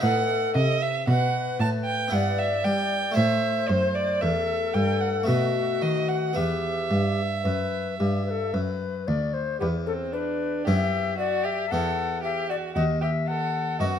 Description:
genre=classical, baroque-style sonata movement with continuo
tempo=57 BPM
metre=3/4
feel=straight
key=E minor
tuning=A4 = 445 Hz
part: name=mellow tenor recorder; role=melody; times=0.0-13.9 s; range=F#4 to F#5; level=-28 LUFS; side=left 7 dB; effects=none
part: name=rich violin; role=second line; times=0.0-14.0 s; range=B3 to A5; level=-28 LUFS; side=right 5 dB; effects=none
part: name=harpsichord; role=accompaniment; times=0.0-14.0 s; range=D2 to C5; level=-30 LUFS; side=left 1 dB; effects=none
part: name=rich cello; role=bass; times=0.0-14.0 s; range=D2 to G3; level=-27 LUFS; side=right 1 dB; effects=none
room=moderate large studio reverb, RT60 1.2 s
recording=none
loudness=-23 LUFS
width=side -8 dB against mid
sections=0.0-9.6 A section; 9.6-14.0 B section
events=none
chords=0.0 B7/A; 2.1 Em/G; 3.2 Am; 5.3 B7; 6.4 Em; 9.6 E5; 12.8 B/D#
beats=| 0.03 1.08 2.12 | 3.17 4.22 5.28 | 6.36 7.45 8.54 | 9.61 10.67 11.72 | 12.76 13.80

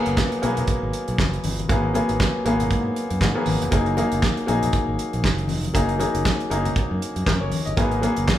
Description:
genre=disco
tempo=118 BPM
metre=4/4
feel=swing 56% on 16ths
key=G# minor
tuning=A4 = 441 Hz
part: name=clear grand piano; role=accompaniment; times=0.0-8.4 s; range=F#3 to D#5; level=-23 LUFS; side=left 1 dB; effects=none
part: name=fingered electric bass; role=bass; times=0.1-8.3 s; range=E#1 to G#2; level=-27 LUFS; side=right 1 dB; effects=none
part: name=damped 70s drum kit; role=drums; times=0.1-8.4 s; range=handclaps, hi-hat, kick drum, snare drum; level=-24 LUFS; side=right 1 dB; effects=none
part: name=congas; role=percussion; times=0.2-8.4 s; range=none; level=-31 LUFS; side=left 3 dB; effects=none
room=moderate large studio reverb, RT60 0.8 s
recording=band playing live in one room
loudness=-20 LUFS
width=side -12 dB against mid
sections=0.0-8.4 A section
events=none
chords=0.0 G#m9; 3.7 F#69; 7.8 G#m9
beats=0.17 0.68 1.19 | 1.69 2.20 2.71 3.21 | 3.72 4.23 4.74 5.24 | 5.75 6.25 6.76 7.27 | 7.77 8.28

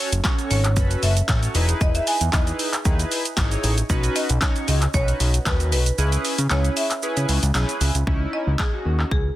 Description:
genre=dance-pop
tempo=115 BPM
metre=4/4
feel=straight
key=C# minor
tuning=A4 = 440 Hz
part: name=marimba with medium hard mallets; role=melody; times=0.0-9.2 s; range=G#4 to G#5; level=-29 LUFS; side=equal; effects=tape echo
part: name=chorused polysynth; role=accompaniment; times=0.0-9.2 s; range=C#4 to C#5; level=-27 LUFS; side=right 1 dB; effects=sidechain pumping
part: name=fat analog bass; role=bass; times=0.1-9.3 s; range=E1 to C#3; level=-21 LUFS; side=equal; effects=sidechain pumping
part: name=house drum kit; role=drums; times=0.1-9.2 s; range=handclaps, hi-hat, kick drum, shaker, snare drum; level=-23 LUFS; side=equal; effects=none
room=digital ambience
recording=dense, heavily limited modern master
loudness=-19 LUFS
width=side -15 dB against mid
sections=0.0-8.1 A section; 8.1-9.4 B section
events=kick muted 6.0-8.1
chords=0.0 F#m; 1.6 Emaj7; 3.9 Badd9; 6.0 C#m7; 8.1 C#madd9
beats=0.24 0.77 1.29 | 1.81 2.33 2.85 3.38 | 3.90 4.42 4.94 5.46 | 5.98 6.51 7.03 7.55 | 8.07 8.59 9.12

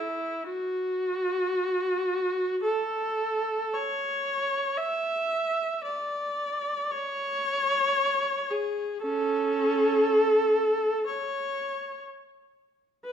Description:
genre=classical, free, expressive piece for unaccompanied viola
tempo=54-63 BPM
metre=4/4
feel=rubato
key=A major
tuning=A4 = 439 Hz
part: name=rich viola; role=solo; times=0.0-13.1 s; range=C#4 to E5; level=-25 LUFS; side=equal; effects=none
room=wet recital hall reverb, RT60 1.5 s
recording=minimal, uncompressed stereo recording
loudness=-25 LUFS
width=side -8 dB against mid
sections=0.0-13.1 A section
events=none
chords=none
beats=| 0.48 1.58 2.63 3.72 | 4.78 5.84 6.91 7.98 | 9.03 10.06 11.08 12.04 | 13.04

